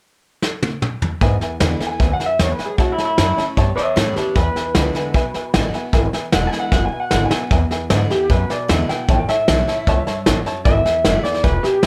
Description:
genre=rockabilly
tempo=152 BPM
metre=4/4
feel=straight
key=E mixolydian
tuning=A4 = 435 Hz
part: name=soft brush drum kit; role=drums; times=0.4-11.9 s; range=hi-hat, kick drum, snare drum, toms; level=-22 LUFS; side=equal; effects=none
part: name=clear upright piano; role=accompaniment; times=1.2-11.9 s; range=B4 to A5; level=-30 LUFS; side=equal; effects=none
part: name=picked steel-string acoustic guitar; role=accompaniment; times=1.2-11.9 s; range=E2 to E4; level=-29 LUFS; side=equal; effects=none
part: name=upright bass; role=bass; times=1.2-11.9 s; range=E1 to A2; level=-23 LUFS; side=equal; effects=none
part: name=electric guitar through a small old amp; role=melody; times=1.9-11.9 s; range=E4 to G#5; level=-23 LUFS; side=equal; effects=analog delay
room=light reverb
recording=none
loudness=-18 LUFS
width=mono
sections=0.0-1.2 A section; 1.2-7.5 B section; 7.5-11.9 C section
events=drum fill 0.4-1.2, 6.7-7.5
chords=0.0 N.C.; 1.2 E7; 2.8 A7; 4.4 E7; 9.1 A7; 10.7 E7

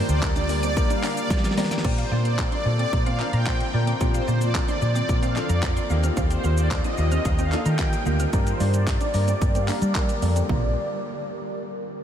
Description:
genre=dance-pop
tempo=111 BPM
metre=4/4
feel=straight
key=Bb major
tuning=A4 = 440 Hz
part: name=clear concert grand piano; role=accompaniment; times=0.0-10.7 s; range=G3 to C5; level=-31 LUFS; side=left 4 dB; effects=sidechain pumping, low-pass filter
part: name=granular cloud pad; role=sustained chords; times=0.0-10.7 s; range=D3 to Bb4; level=-33 LUFS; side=equal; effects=built-in reverb, wide subtle chorus, sidechain pumping, low-pass filter
part: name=resonant blip pluck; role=arpeggios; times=0.0-10.7 s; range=C5 to D7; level=-36 LUFS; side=left 1 dB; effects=none
part: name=electric guitar at the edge of break-up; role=riff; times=0.0-10.7 s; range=Bb3 to D4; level=-35 LUFS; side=right 4 dB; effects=lush chorus, low-pass filter
part: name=supersaw pad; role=melody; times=0.1-10.7 s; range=C5 to G5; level=-30 LUFS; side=right 1 dB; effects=sidechain pumping, low-pass filter, ping-pong delay
part: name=vintage muted fingered electric bass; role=bass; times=0.1-10.7 s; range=Bb1 to G3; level=-23 LUFS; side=equal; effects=sidechain pumping
part: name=pop drum kit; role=drums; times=0.1-10.6 s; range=crash cymbal, handclaps, hi-hat, kick drum, shaker, snare drum, toms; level=-26 LUFS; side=equal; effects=none
room=moderate huge ambient reverb, RT60 7.4 s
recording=dreamy mix soaked in reverb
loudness=-20 LUFS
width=side -9 dB against mid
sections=0.0-1.8 A section; 1.8-10.5 B section; 10.5-12.0 C section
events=drop 0.0-1.8; drum fill 1.3-1.8; filter sweep 1.8-10.5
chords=0.0 Gm; 1.8 Bbadd9; 5.9 Ebadd9; 8.3 Gm; 10.5 Bbadd9

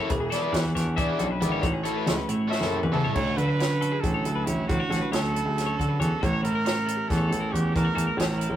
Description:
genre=math rock and midwest emo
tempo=274 BPM (eighths)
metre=7/8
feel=straight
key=A major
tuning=A4 = 435 Hz
part: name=twelve-string electric guitar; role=accompaniment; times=0.0-8.6 s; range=E2 to G#4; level=-34 LUFS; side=right 4 dB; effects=spring reverb
part: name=twelve-string electric guitar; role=arpeggios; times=0.0-8.6 s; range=G4 to E5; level=-34 LUFS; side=left 6 dB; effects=digital delay
part: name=raw garage guitar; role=riff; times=0.0-3.2 s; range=B3 to D5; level=-29 LUFS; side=left 2 dB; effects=overdrive
part: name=warm grand piano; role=bass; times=0.1-8.6 s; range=E1 to D3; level=-26 LUFS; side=equal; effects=none
part: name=compact cocktail drum kit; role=drums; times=0.1-8.5 s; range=crash cymbal, hi-hat, kick drum, snare drum, toms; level=-30 LUFS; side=equal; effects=none
part: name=bright trumpet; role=melody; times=2.9-8.6 s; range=E4 to C#5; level=-29 LUFS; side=right 2 dB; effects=none
room=light reverb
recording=rough rehearsal-room recording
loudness=-23 LUFS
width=side -11 dB against mid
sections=0.0-3.2 A section; 3.2-8.6 B section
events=drum fill 2.5-3.2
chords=0.1 E9; 1.6 A69; 3.2 Dmaj9; 6.2 A7b9

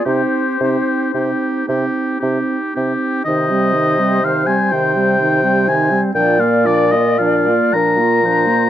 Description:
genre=classical, slow romantic movement for wind quintet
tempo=36-42 BPM (dotted quarters)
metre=6/8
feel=rubato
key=C minor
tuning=A4 = 440 Hz
part: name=silver concert flute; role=melody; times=0.0-8.7 s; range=Bb4 to D5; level=-22 LUFS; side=left 6 dB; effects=none
part: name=clear oboe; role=second line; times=0.0-8.7 s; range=G4 to Bb5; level=-18 LUFS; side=left 2 dB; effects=none
part: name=mellow French horn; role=accompaniment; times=0.0-8.7 s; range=Eb3 to C4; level=-21 LUFS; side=right 1 dB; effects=none
part: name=warm clarinet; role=accompaniment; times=0.0-8.7 s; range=C4 to F4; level=-23 LUFS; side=right 5 dB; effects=none
part: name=mellow bassoon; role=bass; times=0.1-8.7 s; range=Bb2 to C3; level=-18 LUFS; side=right 1 dB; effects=none
room=light reverb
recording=dark, warm production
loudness=-13 LUFS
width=side -11 dB against mid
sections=0.0-3.3 A section; 3.3-8.7 A section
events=none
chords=0.1 Cm; 6.1 Bb

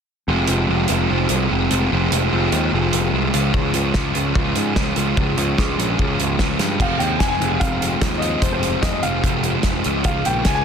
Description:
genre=indie rock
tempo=147 BPM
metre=4/4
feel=straight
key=F minor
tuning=A4 = 440 Hz
part: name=fuzz guitar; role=riff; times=0.3-10.6 s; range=F2 to F4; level=-20 LUFS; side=right 1 dB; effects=distortion
part: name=overdriven picked electric bass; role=bass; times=0.3-10.6 s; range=F1 to Ab2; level=-22 LUFS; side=equal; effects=none
part: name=loose indie drum kit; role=drums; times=0.5-10.6 s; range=crash cymbal, hi-hat, kick drum, snare drum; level=-22 LUFS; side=equal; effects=none
part: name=clear upright piano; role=melody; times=6.8-10.6 s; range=C5 to Ab5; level=-24 LUFS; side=left 2 dB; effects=digital delay
room=small room ambience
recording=dense, heavily limited modern master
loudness=-17 LUFS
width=side -7 dB against mid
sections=0.3-6.8 A section; 6.8-10.6 B section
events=none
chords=0.3 Fm; 3.3 Db; 6.8 Fm7; 9.8 Db

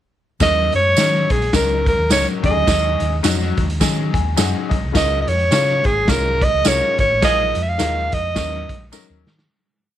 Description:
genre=uptempo 1960s-style soul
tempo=106 BPM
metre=4/4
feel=swing 58% on 8ths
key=Eb dorian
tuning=A4 = 440 Hz
part: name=warm alto saxophone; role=melody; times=0.4-8.9 s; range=Ab4 to F5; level=-18 LUFS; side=right 1 dB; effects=none
part: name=clear upright piano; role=accompaniment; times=0.4-9.3 s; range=Gb3 to Ab5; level=-24 LUFS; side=left 10 dB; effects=none
part: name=fingered electric bass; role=bass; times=0.4-9.5 s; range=Ab1 to Eb3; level=-22 LUFS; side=equal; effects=none
part: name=raw garage drum kit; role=drums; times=0.4-9.5 s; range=hi-hat, kick drum, snare drum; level=-21 LUFS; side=equal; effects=none
part: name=tambourine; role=percussion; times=0.4-9.1 s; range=none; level=-26 LUFS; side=right 14 dB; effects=none
part: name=warm horn section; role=second line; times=7.2-7.4 s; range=F3 to Ab4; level=-26 LUFS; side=right 12 dB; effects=none
room=studio ambience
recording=1960s-style stereo with parts hard left and right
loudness=-15 LUFS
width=side -11 dB against mid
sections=0.4-9.5 A section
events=upright piano fill 3.8-5.0; fade-out 7.2-9.5; band accent 7.2-9.5; drum fill 8.9-9.5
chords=0.4 Ebm7; 2.4 Ab7sus4; 5.0 Db6; 7.2 Bb7sus4; 8.4 Ebm7

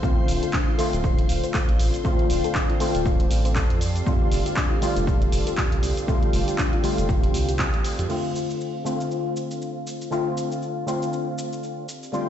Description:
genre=deep house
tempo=119 BPM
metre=4/4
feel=swing 57% on 16ths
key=D minor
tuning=A4 = 439 Hz
part: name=warm analog pad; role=sustained chords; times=0.0-12.3 s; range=C4 to G5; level=-35 LUFS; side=right 2 dB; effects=chorus, vintage 12-bit sampler grit, sidechain pumping
part: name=soft round pluck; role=arpeggios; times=0.0-8.0, 12.1-12.2 s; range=C4 to C5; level=-35 LUFS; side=left 5 dB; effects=chorus, sidechain pumping, ping-pong delay
part: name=percussive organ stab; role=stabs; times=0.0-12.3 s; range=D3 to F4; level=-26 LUFS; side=left 1 dB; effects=ensemble chorus, sidechain pumping, ping-pong delay
part: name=round analog bass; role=bass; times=0.0-8.1 s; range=D1 to F2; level=-24 LUFS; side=equal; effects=sidechain pumping
part: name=electronic kick drum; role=drums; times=0.0-7.7 s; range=none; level=-23 LUFS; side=equal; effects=small room ambience
part: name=punchy analog drum machine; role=drums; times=0.0-12.2 s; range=crash cymbal, handclaps, hi-hat, shaker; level=-32 LUFS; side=equal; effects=small room ambience
part: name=string machine, violins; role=texture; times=0.0-8.1, 12.1-12.3 s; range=G4 to C6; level=-40 LUFS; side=equal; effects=ensemble chorus, sidechain pumping
room=digital ambience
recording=played on a big sound system in a bare room, large studio reverb, nothing above 8.0 kHz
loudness=-21 LUFS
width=side -10 dB against mid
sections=0.0-8.1 A section; 8.1-12.3 B section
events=band accent 7.6; filter sweep on synth stab 8.1-12.3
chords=0.0 Dm7; 3.8 F69; 8.1 Dm7

